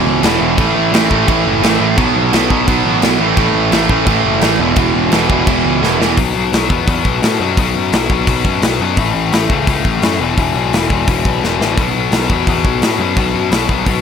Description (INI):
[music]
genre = punk rock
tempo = 172 BPM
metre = 4/4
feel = straight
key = unclear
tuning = A4 = 440 Hz
[part]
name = crunchy overdriven guitar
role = riff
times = 0.0-6.2 s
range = E2 to B3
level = -15 LUFS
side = right 18 dB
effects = none
[part]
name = tight distorted guitar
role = riff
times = 0.0-14.0 s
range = E2 to B3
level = -16 LUFS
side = left 8 dB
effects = distortion
[part]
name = fuzz picked electric bass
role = bass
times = 0.0-14.0 s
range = E1 to A2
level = -19 LUFS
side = equal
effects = overdrive
[part]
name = big rock drum kit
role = drums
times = 0.2-14.0 s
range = crash cymbal, hi-hat, kick drum, snare drum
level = -17 LUFS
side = equal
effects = none
[sound]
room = light reverb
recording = none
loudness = -11 LUFS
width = side -7 dB against mid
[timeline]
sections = 0.0-6.2 A section; 6.2-14.0 B section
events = drum fill 5.8-6.2, 11.4-11.8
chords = 0.0 E5; 0.6 A5; 2.0 B5; 3.2 A5; 4.6 E5; 6.2 B5; 9.0 A; 10.2 E5; 11.8 B5